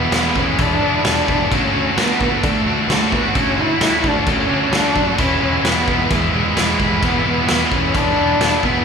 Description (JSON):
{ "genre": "quiet-loud alternative rock", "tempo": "131 BPM", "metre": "4/4", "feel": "straight", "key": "E mixolydian", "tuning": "A4 = 438 Hz", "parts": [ { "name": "dark cello", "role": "melody", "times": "0.0-8.8 s", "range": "G#3 to E4", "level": "-20 LUFS", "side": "equal", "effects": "none" }, { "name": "distorted electric guitar", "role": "riff", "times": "0.0-8.8 s", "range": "D3 to F#4", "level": "-21 LUFS", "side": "right 7 dB", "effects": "overdrive" }, { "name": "scooped high-gain guitar", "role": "riff", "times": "0.0-8.8 s", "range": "D3 to F#4", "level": "-21 LUFS", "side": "left 8 dB", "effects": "distortion" }, { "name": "picked electric bass", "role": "bass", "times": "0.0-8.8 s", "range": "E1 to D3", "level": "-24 LUFS", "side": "equal", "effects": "none" }, { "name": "raw garage drum kit", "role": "drums", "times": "0.1-8.7 s", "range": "crash cymbal, kick drum, snare drum", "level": "-20 LUFS", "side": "left 1 dB", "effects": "none" } ], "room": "moderate large studio reverb, RT60 1.5 s", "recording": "band playing live in one room", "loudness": "-14 LUFS", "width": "side -6 dB against mid", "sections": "0.0-8.8 A section", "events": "none", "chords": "0.0 E7; 1.5 Dmaj7; 5.2 E", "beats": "0.13 0.59 1.05 | 1.51 1.97 2.43 2.89 | 3.35 3.81 4.27 4.73 | 5.19 5.65 6.11 6.57 | 7.03 7.48 7.94 8.40" }